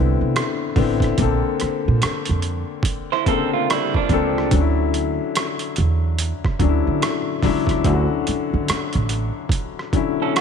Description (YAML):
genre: R&B, neo-soul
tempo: 72 BPM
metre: 4/4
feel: swing 62% on 16ths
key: D major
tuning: A4 = 439 Hz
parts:
  - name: warm upright piano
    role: accompaniment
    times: 0.0-10.4 s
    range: C#3 to A4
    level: -22 LUFS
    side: left 9 dB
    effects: none
  - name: upright bass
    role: bass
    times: 0.0-9.3 s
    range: A1 to D3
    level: -20 LUFS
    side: right 2 dB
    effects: none
  - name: boom bap sampler-style drum kit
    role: drums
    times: 0.4-10.4 s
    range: hi-hat, kick drum, rim click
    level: -23 LUFS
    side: right 2 dB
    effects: overdrive
  - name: electric guitar through a small old amp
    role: second line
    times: 3.1-4.5, 10.2-10.4 s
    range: F3 to C5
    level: -22 LUFS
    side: right 14 dB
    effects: none
room: light reverb, studio reverb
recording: 1960s-style stereo with parts hard left and right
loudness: -18 LUFS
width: side -6 dB against mid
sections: 0.0-10.4 A section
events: none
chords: 0.0 Cmaj9; 1.2 Bbmaj9; 4.5 Dmaj9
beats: 0.34 | 1.18 2.01 2.85 3.68 | 4.51 5.34 6.18 7.01 | 7.84 8.68 9.51 10.35